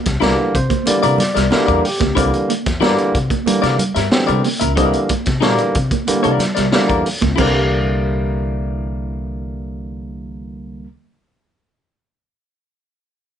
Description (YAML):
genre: funk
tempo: 92 BPM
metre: 4/4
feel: straight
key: C mixolydian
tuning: A4 = 440 Hz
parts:
  - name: upright bass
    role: bass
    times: 0.1-10.8 s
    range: C2 to C3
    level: -22 LUFS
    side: left 1 dB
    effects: none
  - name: crunchy breakbeat drum kit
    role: drums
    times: 0.1-7.5 s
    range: crash cymbal, hi-hat, kick drum, snare drum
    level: -20 LUFS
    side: equal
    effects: none
  - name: clean electric guitar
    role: accompaniment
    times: 0.2-10.9 s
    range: E4 to E5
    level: -21 LUFS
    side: left 6 dB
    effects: none
  - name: mellow electric guitar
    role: riff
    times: 0.2-7.6 s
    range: G3 to C4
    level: -22 LUFS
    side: right 4 dB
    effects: none
  - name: barky tine electric piano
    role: stabs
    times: 0.2-10.9 s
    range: D3 to D5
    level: -19 LUFS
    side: right 1 dB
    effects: overdrive
  - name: congas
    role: percussion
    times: 0.2-7.7 s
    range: none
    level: -26 LUFS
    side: right 3 dB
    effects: none
room: light reverb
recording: nothing above 10.6 kHz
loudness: -14 LUFS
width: side -9 dB against mid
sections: 0.0-7.4 A section; 7.4-10.0 B section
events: tine electric piano fill 0.2-2.2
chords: 0.0 C9